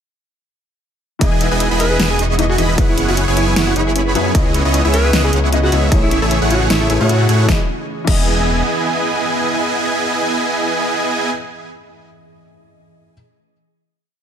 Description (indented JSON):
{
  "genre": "future bass",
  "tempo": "153 BPM",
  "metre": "4/4",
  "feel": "swing 55% on 16ths, half-time",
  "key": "E major",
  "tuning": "A4 = 439 Hz",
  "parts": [
    { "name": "felt-muted upright piano", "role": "accompaniment", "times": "1.2-13.1 s", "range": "C#3 to D#5", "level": "-25 LUFS", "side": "left 3 dB", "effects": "sidechain pumping, digital delay" },
    { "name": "ethereal airy pad", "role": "sustained chords", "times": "2.2-10.7 s", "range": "C#3 to D#5", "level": "-29 LUFS", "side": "equal", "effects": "none" },
    { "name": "wide unison pluck", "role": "arpeggios", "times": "1.2-8.2 s", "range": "C#4 to D#5", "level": "-27 LUFS", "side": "left 3 dB", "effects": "none" },
    { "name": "supersaw chords", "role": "riff", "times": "1.2-11.3 s", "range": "A3 to C#6", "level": "-18 LUFS", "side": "right 2 dB", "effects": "sidechain pumping" },
    { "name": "wide detuned saw bass", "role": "bass", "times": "1.2-8.6 s", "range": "E1 to A2", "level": "-17 LUFS", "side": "equal", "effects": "chorus, tube saturation, sidechain pumping" },
    { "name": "big-room dance drum kit", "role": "drums", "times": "1.2-8.2 s", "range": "crash cymbal, hi-hat, ride cymbal, snare drum", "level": "-21 LUFS", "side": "equal", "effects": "none" },
    { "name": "electronic kick drum", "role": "drums", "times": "1.2-8.2 s", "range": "none", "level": "-16 LUFS", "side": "equal", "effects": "none" },
    { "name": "mellow alto saxophone", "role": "melody", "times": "1.8-7.5 s", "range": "E4 to B4", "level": "-22 LUFS", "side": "equal", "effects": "sidechain pumping, ping-pong delay" }
  ],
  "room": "light reverb",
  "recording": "none",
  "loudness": "-13 LUFS",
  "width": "side -8 dB against mid",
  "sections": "1.2-7.5 drop; 7.5-10.6 final chord",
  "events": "drop 1.2-7.5",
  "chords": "1.2 Emaj7; 2.8 F#9sus4; 4.3 C#m9; 5.9 Amaj7; 7.5 Emaj7"
}